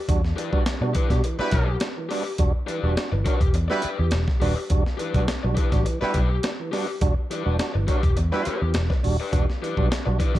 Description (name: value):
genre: funk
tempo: 104 BPM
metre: 4/4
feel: straight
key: E minor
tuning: A4 = 440 Hz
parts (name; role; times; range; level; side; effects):
- tonewheel organ; stabs; 0.1-10.4 s; E3 to F#4; -29 LUFS; right 5 dB; overdrive, fast rotary speaker
- vintage muted picked electric bass; bass; 0.1-10.4 s; D#1 to B2; -23 LUFS; equal; none
- breakbeat sampler-style drum kit; drums; 0.1-10.4 s; hi-hat, kick drum, snare drum; -24 LUFS; equal; none
- raw garage guitar; accompaniment; 0.4-10.4 s; G4 to D5; -30 LUFS; left 6 dB; overdrive, spring reverb
- warm horn section; second line; 1.4-8.6 s; G3 to B4; -28 LUFS; right 1 dB; none
room: digital ambience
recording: dark, warm production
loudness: -21 LUFS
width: side -14 dB against mid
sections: 0.0-10.4 A section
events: none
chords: 0.0 Em7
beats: | 0.09 0.67 1.24 1.82 | 2.40 2.97 3.55 4.13 | 4.71 5.28 5.86 6.44 | 7.02 7.59 8.17 8.75 | 9.33 9.91